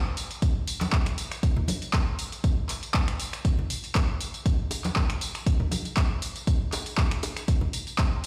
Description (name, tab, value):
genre	house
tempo	119 BPM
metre	4/4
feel	swing 54% on 16ths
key	none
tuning	none
part	punchy analog drum machine	drums	0.2-8.3 s	finger snaps, handclaps, hi-hat, tambourine	-34 LUFS	equal	none
part	electronic kick drum	drums	0.4-8.1 s	none	-27 LUFS	equal	overdrive
part	congas and bongos	percussion	0.8-7.7 s	none	-35 LUFS	equal	none
room	light reverb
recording	played on a big sound system in a bare room, stone room reverb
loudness	-27 LUFS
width	mono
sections	0.0-8.3 A section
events	none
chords	none